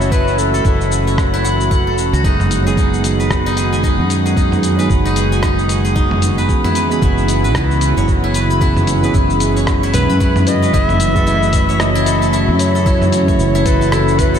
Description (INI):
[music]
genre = organic downtempo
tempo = 113 BPM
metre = 4/4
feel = swing 59% on 16ths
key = F# dorian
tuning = A4 = 439 Hz
[part]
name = warm clarinet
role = melody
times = 0.0-1.2, 9.9-14.4 s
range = A4 to E5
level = -21 LUFS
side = left 1 dB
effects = ping-pong delay
[part]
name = airy breathy pad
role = sustained chords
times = 0.0-14.4 s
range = C#3 to F#4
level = -22 LUFS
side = right 1 dB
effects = chorus, sidechain pumping
[part]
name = steel-string zither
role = arpeggios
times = 0.0-14.4 s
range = D#4 to B5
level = -20 LUFS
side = left 3 dB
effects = diffuse ambient delay
[part]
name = fretless electric bass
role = bass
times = 0.0-14.4 s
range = E1 to F#2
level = -17 LUFS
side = equal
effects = none
[part]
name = dusty soul sampler-style drum kit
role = drums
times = 0.0-14.4 s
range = cabasa, hi-hat, rim click, toms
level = -22 LUFS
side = equal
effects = none
[part]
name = drifting glass-harmonics texture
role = texture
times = 0.0-14.4 s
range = F#4 to F#5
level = -27 LUFS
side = right 1 dB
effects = chorus, built-in reverb
[part]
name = electronic kick drum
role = drums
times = 0.1-14.3 s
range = none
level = -17 LUFS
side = equal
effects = none
[part]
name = bell-like tine electric piano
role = accompaniment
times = 2.2-14.4 s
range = C#3 to G#4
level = -20 LUFS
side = right 4 dB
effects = sidechain pumping, diffuse ambient delay
[sound]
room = moderate huge ambient reverb, RT60 9.7 s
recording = dreamy mix soaked in reverb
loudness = -12 LUFS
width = side -8 dB against mid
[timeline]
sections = 0.0-10.7 A section; 10.7-14.4 B section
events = none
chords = 0.0 F#m7; 2.2 G#m7/F#; 6.5 C#m7/F#; 10.7 F#m7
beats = | 0.12 0.65 1.18 1.71 | 2.24 2.77 3.30 3.83 | 4.36 4.89 5.43 5.96 | 6.49 7.02 7.55 8.08 | 8.61 9.14 9.67 10.21 | 10.74 11.27 11.80 12.33 | 12.86 13.39 13.92